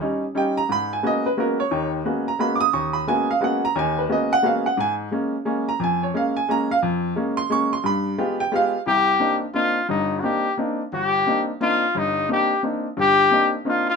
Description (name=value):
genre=jazz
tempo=176 BPM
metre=3/4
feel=swing 62% on 8ths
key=G# dorian, C minor from 8.9 s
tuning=A4 = 440 Hz
part: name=bright upright piano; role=accompaniment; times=0.0-13.9 s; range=G1 to D#6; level=-21 LUFS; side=right 1 dB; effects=none
part: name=clear trumpet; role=melody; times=8.9-13.9 s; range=Eb4 to G4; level=-19 LUFS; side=left 3 dB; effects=none
room=light reverb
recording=minimal, uncompressed stereo recording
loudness=-19 LUFS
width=side -5 dB against mid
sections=0.7-8.9 A section; 8.9-14.0 B section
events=none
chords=0.0 Eb7; 0.7 G#m11; 4.8 A#m7; 7.8 G7b9; 8.9 Cm9